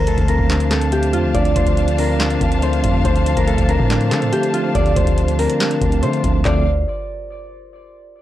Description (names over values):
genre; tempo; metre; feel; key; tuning
hip hop, trap; 141 BPM; 4/4; half-time; D minor; A4 = 439 Hz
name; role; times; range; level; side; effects
Celtic harp; melody; 0.0-7.1 s; F4 to C6; -22 LUFS; left 1 dB; tape echo
tine electric piano; accompaniment; 0.0-6.7 s; D3 to D4; -21 LUFS; equal; medium stereo tremolo
warm symphonic string section; sustained chords; 0.0-6.7 s; D3 to A5; -26 LUFS; left 1 dB; none
long sustained 808-style bass; bass; 0.0-6.8 s; D2 to D3; -19 LUFS; equal; none
booming analog drum machine; drums; 0.1-6.6 s; handclaps, hi-hat, kick drum, snare drum; -21 LUFS; equal; none
room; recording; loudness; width
little or no reverb; dry, gritty hardware recording, transformer saturation, cassette tape; -14 LUFS; side -13 dB against mid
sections
0.0-6.5 A section; 6.5-8.2 B section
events
none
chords
0.0 Dm7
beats
0.07 0.50 0.92 | 1.35 1.77 2.20 2.62 | 3.05 3.47 3.90 4.33 | 4.75 5.18 5.60 6.03 | 6.45 6.88